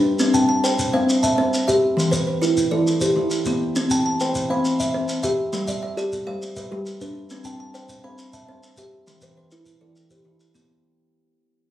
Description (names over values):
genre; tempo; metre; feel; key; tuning
southern african traditional, mbira-style interlocking cycle; 135 BPM (dotted quarters); 12/8; straight; C major; A4 = 439 Hz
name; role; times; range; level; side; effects
kalimba; arpeggios; 0.0-10.8 s; E3 to G5; -21 LUFS; left 2 dB; none
kalimba; arpeggios; 0.0-10.8 s; E3 to B5; -24 LUFS; right 4 dB; none
shekere; percussion; 0.2-10.7 s; none; -29 LUFS; equal; none
room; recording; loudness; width
light reverb; recorded on a phone in the room, studio reverb, compression; -18 LUFS; side -12 dB against mid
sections
0.0-10.8 A section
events
fade-out 0.0-10.8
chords
0.2 C; 2.0 Em; 3.8 C; 5.5 G; 7.3 C; 9.1 Em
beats
| 0.20 0.64 1.09 1.53 | 1.98 2.42 2.87 3.31 | 3.76 4.20 4.65 5.09 | 5.54 5.98 6.42 6.86 | 7.30 7.75 8.19 8.63 | 9.07 9.51 9.96 10.40